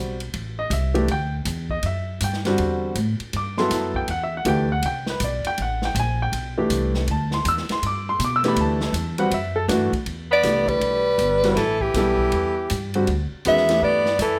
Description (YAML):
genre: modal jazz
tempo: 160 BPM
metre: 4/4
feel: swing 65% on 8ths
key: A dorian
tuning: A4 = 439 Hz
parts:
  - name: warm grand piano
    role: accompaniment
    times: 0.0-14.0 s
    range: D3 to E6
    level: -26 LUFS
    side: equal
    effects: none
  - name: upright bass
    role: bass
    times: 0.0-14.4 s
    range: G1 to B2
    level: -28 LUFS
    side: equal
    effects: none
  - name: swinging big-band drum kit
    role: drums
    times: 0.2-14.3 s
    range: hi-hat, kick drum, ride cymbal, snare drum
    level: -34 LUFS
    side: equal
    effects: none
  - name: breathy soprano saxophone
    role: melody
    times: 10.3-14.4 s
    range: G4 to E5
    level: -22 LUFS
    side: equal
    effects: plate reverb
  - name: warm tenor saxophone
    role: second line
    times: 10.3-14.4 s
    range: E3 to B3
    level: -29 LUFS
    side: equal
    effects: none
room: moderate studio reverb, RT60 0.9 s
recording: none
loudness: -22 LUFS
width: mono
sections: 0.0-10.1 A section; 10.1-14.4 B section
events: none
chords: 0.0 A9sus4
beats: 0.34 0.71 | 1.09 1.46 1.83 2.21 | 2.58 2.96 3.33 3.71 | 4.08 4.45 4.83 5.20 | 5.58 5.95 6.33 6.70 | 7.07 7.45 7.82 8.20 | 8.57 8.94 9.32 9.69 | 10.07 10.44 10.81 11.19 | 11.56 11.94 12.31 12.69 | 13.06 13.44 13.81 14.19